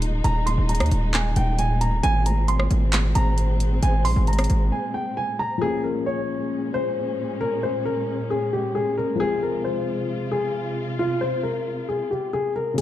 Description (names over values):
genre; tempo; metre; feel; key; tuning
hip hop, trap; 134 BPM; 4/4; half-time; Bb minor; A4 = 435 Hz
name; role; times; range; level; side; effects
dark baby grand piano; melody; 0.0-12.8 s; F4 to C6; -25 LUFS; left 1 dB; low-pass filter
dark symphonic string section; sustained chords; 0.0-12.7 s; Bb2 to F4; -30 LUFS; equal; none
distorted 808-style bass; bass; 0.0-4.7 s; Eb1 to Eb2; -20 LUFS; equal; distortion
trap drum kit; drums; 0.0-4.6, 12.8 s; crash cymbal, handclaps, hi-hat, rim click; -27 LUFS; equal; overdrive
dark concert grand piano; accompaniment; 5.6-12.8 s; Db3 to Ab4; -31 LUFS; left 6 dB; low-pass filter
room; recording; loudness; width
studio reverb; dark, warm production; -21 LUFS; side -13 dB against mid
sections
0.0-5.6 A section; 5.6-12.8 B section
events
break 4.7-5.6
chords
0.0 Ebsus4; 2.0 Abadd9; 5.6 Bbm7; 9.2 Fm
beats
| 0.24 0.69 1.14 1.59 | 2.03 2.48 2.93 3.38 | 3.83 4.27 4.72 5.17 | 5.62 6.06 6.51 6.96 | 7.41 7.86 8.30 8.75 | 9.20 9.65 10.09 10.54 | 10.99 11.44 11.88 12.33 | 12.78